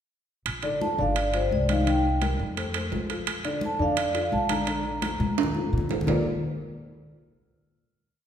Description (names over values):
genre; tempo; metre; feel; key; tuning
Afro-Cuban jazz; 171 BPM; 4/4; straight; Bb major; A4 = 440 Hz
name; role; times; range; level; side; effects
upright bass; bass; 0.5-6.2 s; G1 to Bb2; -30 LUFS; equal; none
congas; percussion; 0.5-6.2 s; none; -32 LUFS; left 1 dB; none
timbales; percussion; 0.5-6.2 s; none; -31 LUFS; right 6 dB; none
dark upright piano; accompaniment; 0.6-6.2 s; D3 to Eb5; -29 LUFS; left 2 dB; none
vibraphone with medium mallets; melody; 0.8-5.7 s; C5 to Bb5; -28 LUFS; right 1 dB; none
room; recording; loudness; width
wet recital hall reverb, RT60 1.6 s; recorded in a church or concert hall; -24 LUFS; side -9 dB against mid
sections
0.5-6.1 A section; 6.1-7.5 final chord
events
drum fill 5.2-6.1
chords
0.5 Bbmaj7; 1.2 G7sus4; 1.9 Cm7; 2.6 F; 3.3 Bbmaj7; 6.1 Bbmaj9